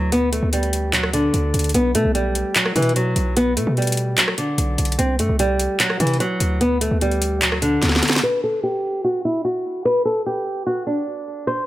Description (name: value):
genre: hip hop, trap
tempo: 148 BPM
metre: 4/4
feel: half-time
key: unclear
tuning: A4 = 438 Hz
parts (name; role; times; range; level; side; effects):
- nylon-string guitar; melody; 0.0-11.6 s; D3 to C5; -20 LUFS; equal; low-pass filter, tape echo
- hard-hitting 808-style bass; bass; 0.0-8.0 s; B1 to C3; -22 LUFS; equal; none
- trap drum kit; drums; 0.1-8.3 s; handclaps, hi-hat, rim click, snare drum; -20 LUFS; equal; none
room: light reverb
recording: none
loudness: -17 LUFS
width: side -15 dB against mid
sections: 0.0-8.2 A section; 8.2-11.7 B section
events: drum fill 7.8-8.2; filter sweep on nylon-string guitar 8.2-11.7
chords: 0.1 Dsus4; 1.7 B5; 5.0 C5; 6.6 Dsus4; 8.2 N.C.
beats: | 0.12 0.53 0.93 1.34 | 1.74 2.15 2.55 2.96 | 3.37 3.77 4.18 4.58 | 4.99 5.39 5.80 6.20 | 6.61 7.01 7.42 7.83 | 8.23 8.63 9.04 9.45 | 9.85 10.26 10.66 11.07 | 11.47